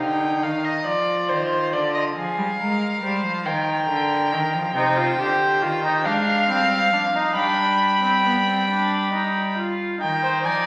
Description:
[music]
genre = classical, baroque-style fugue for string quartet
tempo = 46 BPM (dotted quarters)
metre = 6/8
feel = straight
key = C minor from 4.8 s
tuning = A4 = 440 Hz
[part]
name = rich violin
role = melody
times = 0.0-10.7 s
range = C5 to B5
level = -25 LUFS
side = equal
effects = none
[part]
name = dark violin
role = second line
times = 0.0-10.7 s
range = Eb4 to G5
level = -29 LUFS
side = equal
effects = none
[part]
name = rich cello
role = bass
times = 0.0-10.7 s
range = C3 to Ab3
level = -29 LUFS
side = equal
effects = none
[part]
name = rich viola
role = accompaniment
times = 4.8-10.7 s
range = B3 to G4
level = -26 LUFS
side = equal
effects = none
[sound]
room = wet scoring stage reverb, RT60 1.6 s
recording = none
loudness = -21 LUFS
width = mono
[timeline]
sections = 0.0-10.0 A section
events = none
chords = 0.0 Cm (rootless); 0.9 F5; 2.2 Bb5/F; 3.5 Eb; 4.8 Cm; 6.1 Fm; 7.4 G; 10.0 Cm/Eb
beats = 0.86 | 2.17 3.46 | 4.76 6.05 | 7.37 8.69 | 10.01

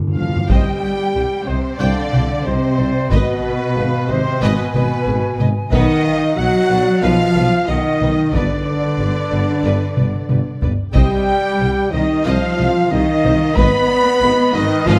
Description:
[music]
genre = cinematic, epic orchestral film score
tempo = 92 BPM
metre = 4/4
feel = straight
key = C harmonic minor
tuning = A4 = 441 Hz
[part]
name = timpani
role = percussion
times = 0.0-0.4, 8.3-11.9 s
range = G2 to C3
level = -26 LUFS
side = equal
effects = none
[part]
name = dark studio violin section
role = melody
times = 0.2-15.0 s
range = Cb5 to Cb6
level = -30 LUFS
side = equal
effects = none
[part]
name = warm symphonic violin section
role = second line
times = 0.2-15.0 s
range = Cb5 to Cb6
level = -32 LUFS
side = equal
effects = none
[part]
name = mellow French horn section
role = sustained chords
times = 0.2-15.0 s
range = Cb4 to Cb5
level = -23 LUFS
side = equal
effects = none
[part]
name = warm trombone section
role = sustained chords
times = 0.2-15.0 s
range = Cb3 to Cb4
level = -28 LUFS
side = equal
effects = none
[part]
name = warm trumpet section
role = stabs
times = 0.2-15.0 s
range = Cb5 to Cb6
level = -27 LUFS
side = equal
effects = none
[part]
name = warm symphonic cello section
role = bass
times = 0.2-15.0 s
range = Cb3 to Cb4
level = -25 LUFS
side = equal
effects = none
[part]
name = warm symphonic viola section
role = accompaniment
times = 0.5-15.0 s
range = Eb4 to G5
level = -31 LUFS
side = equal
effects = none
[part]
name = mellow tuba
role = bass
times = 0.5-15.0 s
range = G1 to C2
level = -27 LUFS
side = equal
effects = none
[part]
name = warm symphonic double bass section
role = bass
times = 0.5-14.9 s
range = G1 to C2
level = -25 LUFS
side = equal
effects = none
[part]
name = taiko ensemble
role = drums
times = 0.5-14.2 s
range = none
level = -22 LUFS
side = equal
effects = none
[part]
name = hollow concert flute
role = second line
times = 1.8-15.0 s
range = Cb5 to Ab5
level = -31 LUFS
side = equal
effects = none
[sound]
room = light reverb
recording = none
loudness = -16 LUFS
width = mono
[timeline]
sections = 0.5-15.0 A section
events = break 0.0-0.5; timpani fill 0.0-0.5; drum fill 0.0-0.5, 10.0-11.0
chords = 0.5 Cm; 3.1 Abm; 5.7 B; 8.3 G; 11.0 Cm; 13.6 Abm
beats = | 0.50 1.15 1.80 2.46 | 3.11 3.76 4.42 5.07 | 5.72 6.38 7.03 7.69 | 8.34 8.99 9.65 10.30 | 10.96 11.61 12.26 12.91 | 13.57 14.22 14.87

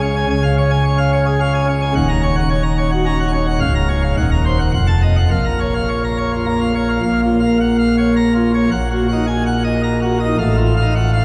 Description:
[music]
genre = classical, organ toccata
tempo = 108 BPM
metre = 3/4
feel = straight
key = Bb minor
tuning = A4 = 440 Hz
[part]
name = pipe organ, plenum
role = solo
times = 0.0-11.2 s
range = Db1 to Bb5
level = -16 LUFS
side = equal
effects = none
[sound]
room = wet church reverb, RT60 3.1 s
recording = heard from further back in the room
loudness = -16 LUFS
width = mono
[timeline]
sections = 0.0-7.0 A section; 7.0-11.2 B section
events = none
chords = 0.0 Db; 2.0 Ebm7; 3.6 Bbm/Db; 4.2 Cm7b5/Eb; 4.7 F7b9; 5.3 Bbm; 8.7 Ebm/Bb; 10.4 F7/A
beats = | 0.30 0.85 1.40 | 1.96 2.51 3.06 | 3.62 4.18 4.74 | 5.32 5.90 6.47 | 7.04 7.60 8.16 | 8.72 9.27 9.83 | 10.39 10.95

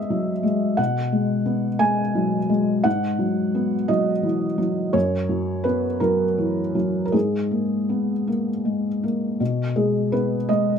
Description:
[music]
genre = neoclassical minimalist piano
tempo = 52-59 BPM (dotted quarters)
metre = 6/8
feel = rubato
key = G# minor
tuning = A4 = 440 Hz
[part]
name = felt-muted upright piano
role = solo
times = 0.0-10.8 s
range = F#2 to G#5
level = -20 LUFS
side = equal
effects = none
[sound]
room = moderate small room ambience, RT60 0.5 s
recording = none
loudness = -20 LUFS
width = side -7 dB against mid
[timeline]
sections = 0.0-9.4 A section; 9.4-10.8 A section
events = none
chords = 0.0 E/G#; 0.8 B5; 2.9 G#m7; 4.9 F#sus4; 7.1 G#madd9; 9.4 B6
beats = | 0.78 1.81 | 2.85 3.89 | 4.95 6.01 | 7.13 8.27 | 9.40 10.49

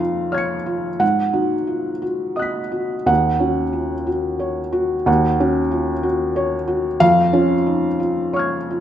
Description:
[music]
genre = neoclassical minimalist piano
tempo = 55-62 BPM (dotted quarters)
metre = 6/8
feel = rubato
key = Eb minor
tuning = A4 = 438 Hz
[part]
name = felt-muted upright piano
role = solo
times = 0.0-8.8 s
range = Eb2 to Db7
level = -17 LUFS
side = equal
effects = none
[sound]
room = moderate concert hall reverb, RT60 2.3 s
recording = minimal, uncompressed stereo recording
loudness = -17 LUFS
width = side -10 dB against mid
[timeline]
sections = 0.0-8.8 A section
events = none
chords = 0.0 Db/F; 1.0 Abm7; 3.1 Ebm7; 7.0 Db/F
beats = 0.00 | 1.01 2.04 | 3.09 4.09 | 5.07 6.04 | 7.00 7.99

